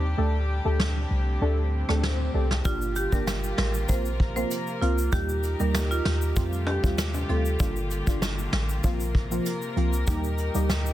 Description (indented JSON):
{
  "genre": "dancehall",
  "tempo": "97 BPM",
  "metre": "4/4",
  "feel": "straight",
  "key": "G minor",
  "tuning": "A4 = 439 Hz",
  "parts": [
    { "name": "deep mellow chord stab", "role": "accompaniment", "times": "0.0-10.7 s", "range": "F3 to Bb4", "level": "-31 LUFS", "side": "right 1 dB", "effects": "chorus, sidechain pumping" },
    { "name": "warm studio string section", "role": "sustained chords", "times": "0.0-10.9 s", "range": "A2 to Bb4", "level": "-34 LUFS", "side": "left 2 dB", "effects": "sidechain pumping" },
    { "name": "clean 808-style bass", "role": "bass", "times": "0.0-10.9 s", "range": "G1 to F2", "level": "-26 LUFS", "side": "equal", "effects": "none" },
    { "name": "swell", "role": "sound effects", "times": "1.0-2.7 s", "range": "none", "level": "-38 LUFS", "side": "left 3 dB", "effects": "none" },
    { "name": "vintage brush drum kit", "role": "drums", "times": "0.8-10.8 s", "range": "hi-hat, kick drum, rim click, snare drum", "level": "-28 LUFS", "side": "equal", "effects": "soft clipping on snare" },
    { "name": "tube shaker and timbales", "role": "percussion", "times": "2.6-10.9 s", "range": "none", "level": "-38 LUFS", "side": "left 3 dB", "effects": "none" },
    { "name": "marimba with medium hard mallets", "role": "melody", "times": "2.7-7.4 s", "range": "F4 to C5", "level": "-31 LUFS", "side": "right 3 dB", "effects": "digital delay" }
  ],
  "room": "studio reverb",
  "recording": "dense, heavily limited modern master",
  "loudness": "-23 LUFS",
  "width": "side -13 dB against mid",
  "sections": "0.0-2.7 A section; 2.7-10.9 B section",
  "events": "kick muted 0.2-2.7; swell 1.0-2.7",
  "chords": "0.2 Dsus4; 2.7 Gm7; 3.9 Bbsus2; 5.1 Eb; 6.4 Fadd9; 7.6 Gm7; 8.8 Bbsus2; 10.1 Eb"
}